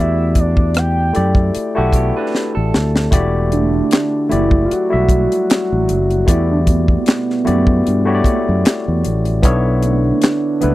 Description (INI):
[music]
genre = R&B, neo-soul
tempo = 76 BPM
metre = 4/4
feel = swing 54% on 16ths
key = E minor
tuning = A4 = 441 Hz
[part]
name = soft octave-layered synth lead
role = melody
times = 0.0-10.7 s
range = B3 to G5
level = -19 LUFS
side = right 1 dB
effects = chorus
[part]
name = barky tine electric piano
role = accompaniment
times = 0.0-10.7 s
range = G3 to E5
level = -20 LUFS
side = left 3 dB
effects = overdrive
[part]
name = fingered electric bass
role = bass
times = 0.0-10.7 s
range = E1 to G2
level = -16 LUFS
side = equal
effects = none
[part]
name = tight funk drum kit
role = drums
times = 0.4-10.7 s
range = handclaps, hi-hat, kick drum, rim click, snare drum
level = -15 LUFS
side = equal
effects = none
[part]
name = electric guitar through a small old amp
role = second line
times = 1.8-3.1 s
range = A3 to B4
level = -24 LUFS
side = right 6 dB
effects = none
[part]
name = congas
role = percussion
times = 3.1-10.7 s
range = none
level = -27 LUFS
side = right 12 dB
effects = none
[sound]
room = little or no reverb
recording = dry, close 1970s-style studio recording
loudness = -13 LUFS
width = side -16 dB against mid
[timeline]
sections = 0.0-3.1 A section; 3.1-10.7 A section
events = drum fill 2.3-3.1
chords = 0.0 Em11; 9.4 Bm11